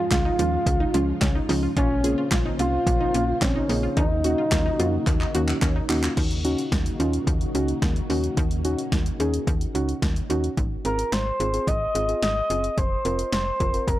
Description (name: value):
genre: synth-pop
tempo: 109 BPM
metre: 4/4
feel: straight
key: unclear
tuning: A4 = 443 Hz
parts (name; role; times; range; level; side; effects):
- expressive synth lead; melody; 0.0-5.6, 10.8-14.0 s; Db4 to Eb5; -25 LUFS; equal; chorus
- string machine, cellos; sustained chords; 0.0-10.5 s; Db3 to C5; -32 LUFS; equal; ensemble chorus
- wide unison pluck; arpeggios; 0.0-6.2 s; C4 to Ab4; -32 LUFS; equal; analog delay
- slap-like FM bass; bass; 0.1-14.0 s; F1 to F2; -27 LUFS; equal; none
- deep house drum kit; drums; 0.1-14.0 s; crash cymbal, handclaps, hi-hat, kick drum, snare drum; -25 LUFS; equal; overdrive
- muted felt-like synth keys; accompaniment; 0.4-13.9 s; F3 to Bb4; -28 LUFS; right 1 dB; chorus
room: little or no reverb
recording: dry, gritty hardware recording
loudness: -21 LUFS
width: side -14 dB against mid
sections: 0.0-6.2 A section; 6.2-10.6 B section; 10.6-14.0 C section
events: drum fill 5.1-6.2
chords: 0.0 Db; 1.8 Bbmadd9; 4.0 Ebm7; 10.6 Ab6; 12.8 Fsus4